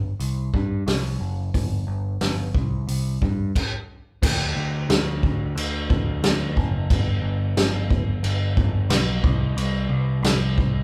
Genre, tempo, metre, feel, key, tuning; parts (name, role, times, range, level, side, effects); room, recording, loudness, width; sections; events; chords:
classic rock; 90 BPM; 4/4; straight; D mixolydian; A4 = 440 Hz
growling picked electric bass; bass; 0.0-10.8 s; F#1 to G2; -26 LUFS; equal; overdrive
vintage drum kit; drums; 0.2-10.7 s; crash cymbal, hi-hat, kick drum, snare drum; -25 LUFS; equal
light reverb; band playing live in one room; -23 LUFS; mono
0.0-4.2 A section; 4.2-10.8 B section
stop 3.6-4.2